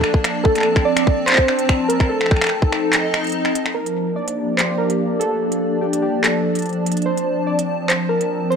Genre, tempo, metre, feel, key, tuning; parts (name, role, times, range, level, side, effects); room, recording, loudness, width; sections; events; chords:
IDM; 145 BPM; 4/4; straight; G minor; A4 = 441 Hz
warbly lo-fi synth keys; melody; 0.0-8.6 s; G4 to D5; -21 LUFS; right 1 dB; chorus, tape echo
hollow soft pad; sustained chords; 0.0-8.6 s; F3 to A5; -21 LUFS; left 1 dB; ensemble chorus, sidechain pumping
electronic kick drum; drums; 0.0-2.7 s; -17 LUFS; equal; overdrive
organic electronic drum kit; drums; 0.0-8.6 s; finger snaps, handclaps, hi-hat; -21 LUFS; equal; overdrive
light reverb; dry, gritty hardware recording; -16 LUFS; side -6 dB against mid
0.0-3.8 A section; 3.8-8.6 B section
kick drops out 2.9-3.8
0.5 Dm7; 2.1 F7; 3.8 Gm7; 5.4 Bbmaj7; 7.1 Dm7